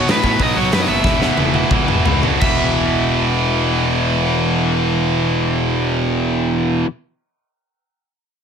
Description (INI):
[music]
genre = punk rock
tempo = 163-191 BPM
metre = 4/4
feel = straight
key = unclear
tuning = A4 = 440 Hz
[part]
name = overdriven semi-hollow guitar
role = melody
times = 0.0-6.8 s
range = B4 to E5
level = -22 LUFS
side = equal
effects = none
[part]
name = tight distorted guitar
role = riff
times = 0.0-6.9 s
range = E2 to B3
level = -17 LUFS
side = right 1 dB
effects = distortion
[part]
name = fuzz picked electric bass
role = bass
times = 0.1-6.8 s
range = E1 to A2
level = -21 LUFS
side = equal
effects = overdrive
[part]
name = big rock drum kit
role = drums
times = 0.1-2.5 s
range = crash cymbal, hi-hat, kick drum, snare drum, toms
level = -19 LUFS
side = equal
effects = none
[sound]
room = little or no reverb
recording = none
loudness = -14 LUFS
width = side -7 dB against mid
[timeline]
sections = 0.0-2.4 A section; 2.4-5.4 B section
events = slowing down 0.0-2.4; drum fill 1.0-2.4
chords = 0.0 B5; 1.0 E5